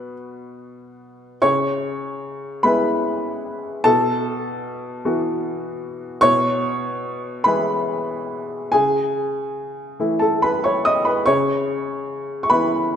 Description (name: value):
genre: neoclassical minimalist piano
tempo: 46-51 BPM (dotted quarters)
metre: 6/8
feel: rubato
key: unclear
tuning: A4 = 440 Hz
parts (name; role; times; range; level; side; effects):
- warm upright piano; solo; 0.0-13.0 s; B2 to D#6; -19 LUFS; equal; none
room: wet concert hall reverb, RT60 2.0 s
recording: none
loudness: -18 LUFS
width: side -8 dB against mid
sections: 0.0-1.4 A section; 1.4-13.0 B section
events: none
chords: 0.0 B5; 1.4 C#m7; 3.9 B7sus4; 6.2 E/B; 8.7 Amaj7/C#; 11.3 C#m7